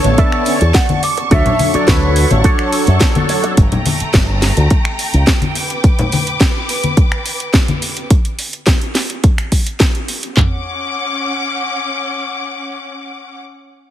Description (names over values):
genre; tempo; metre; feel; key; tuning
nu-disco, nu disco; 106 BPM; 4/4; straight; D major; A4 = 440 Hz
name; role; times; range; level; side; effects
breathy mellow jazz flute; melody; 0.0-3.0 s; B4 to E5; -21 LUFS; equal; analog delay
mellow synth brass; accompaniment; 0.0-3.5 s; D3 to C#5; -19 LUFS; equal; chorus, phaser, sidechain pumping, analog delay
clear symphonic string section; sustained chords; 0.0-13.4 s; A3 to D6; -22 LUFS; left 1 dB; vintage 12-bit sampler grit, sidechain pumping
fingered electric bass with an envelope filter; bass; 0.0-5.2 s; G1 to F#2; -13 LUFS; equal; none
house drum kit; drums; 0.0-10.3 s; finger snaps, hi-hat, snare drum; -19 LUFS; equal; none
congas and maracas; percussion; 0.0-8.1 s; none; -20 LUFS; left 3 dB; none
electric guitar with an envelope filter; riff; 0.2-3.5 s; D4 to F#5; -20 LUFS; right 3 dB; analog chorus
house drum kit; drums; 0.2-10.5 s; handclaps, kick drum, toms; -13 LUFS; equal; none
room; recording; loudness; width
light reverb; heavily compressed radio sound, multiband compression; -12 LUFS; side -12 dB against mid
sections
0.0-10.4 A section; 10.4-12.6 B section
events
drop 0.0-10.4; clean electric guitar fill 0.5-1.3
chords
0.0 Bm9; 1.3 Dmaj7; 3.6 Gmadd9; 5.6 G/B; 8.1 N.C.; 10.4 Dmaj7